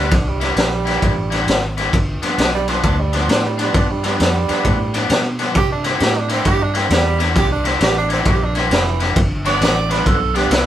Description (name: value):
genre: electric blues shuffle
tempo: 133 BPM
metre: 4/4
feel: swing 64% on 8ths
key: G mixolydian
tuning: A4 = 440 Hz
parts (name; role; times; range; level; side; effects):
- clear tenor saxophone; second line; 0.0-10.7 s; E3 to D5; -22 LUFS; right 6 dB; none
- overdriven electric guitar; riff; 0.0-10.6 s; G2 to B4; -22 LUFS; left 4 dB; none
- vintage muted fingered electric bass; bass; 0.0-10.7 s; F1 to C3; -22 LUFS; equal; none
- raw garage drum kit; drums; 0.1-10.7 s; kick drum, ride cymbal, snare drum; -18 LUFS; equal; none
room: light reverb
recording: band playing live in one room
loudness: -14 LUFS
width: side -11 dB against mid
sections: 0.0-10.7 A section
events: tenor saxophone solo 0.0-10.7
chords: 0.1 C7; 1.9 G7; 5.6 C7; 9.2 G7